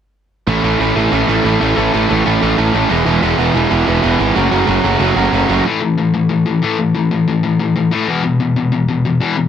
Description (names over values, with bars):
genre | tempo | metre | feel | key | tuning
punk | 185 BPM | 4/4 | straight | A major | A4 = 440 Hz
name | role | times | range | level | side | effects
distorted electric guitar | riff | 0.5-9.5 s | E2 to A3 | -14 LUFS | left 4 dB | distortion
overdriven electric guitar | riff | 0.5-5.6 s | A2 to F#4 | -16 LUFS | right 12 dB | none
fuzz picked electric bass | bass | 0.5-5.6 s | E1 to A1 | -18 LUFS | right 1 dB | overdrive
room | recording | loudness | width
light reverb | none | -12 LUFS | side -8 dB against mid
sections
0.5-5.6 A section; 5.6-9.5 B section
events
none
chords
0.5 A; 2.9 E; 4.4 F#m; 5.6 A5; 8.1 E5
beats
| 0.47 0.79 1.12 1.44 | 1.76 2.09 2.41 2.73 | 3.06 3.38 3.71 4.03 | 4.35 4.68 5.00 5.33 | 5.65 5.97 6.29 6.62 | 6.94 7.26 7.59 7.91 | 8.23 8.56 8.88 9.20